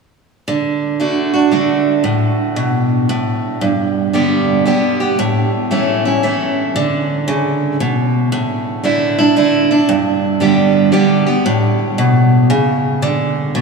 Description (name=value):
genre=country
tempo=115 BPM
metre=3/4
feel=swing 66% on 8ths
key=unclear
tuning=A4 = 440 Hz
part: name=picked steel-string acoustic guitar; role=solo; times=0.5-13.6 s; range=G2 to G4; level=-13 LUFS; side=right 2 dB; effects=none
room=wet cathedral reverb, RT60 6.2 s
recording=in a vast, echoing space, small room reverb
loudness=-13 LUFS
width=side -4 dB against mid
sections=0.5-6.8 A section; 6.8-13.6 B section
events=none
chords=0.5 D; 2.0 Asus2; 3.6 G; 5.2 A; 6.8 Bmadd9; 8.3 Asus4; 9.9 G; 11.5 A; 13.0 D5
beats=| 0.47 1.00 1.52 | 2.04 2.57 3.09 | 3.62 4.14 4.66 | 5.18 5.71 6.23 | 6.75 7.27 7.80 | 8.32 8.84 9.36 | 9.89 10.41 10.93 | 11.45 11.97 12.50 | 13.02 13.54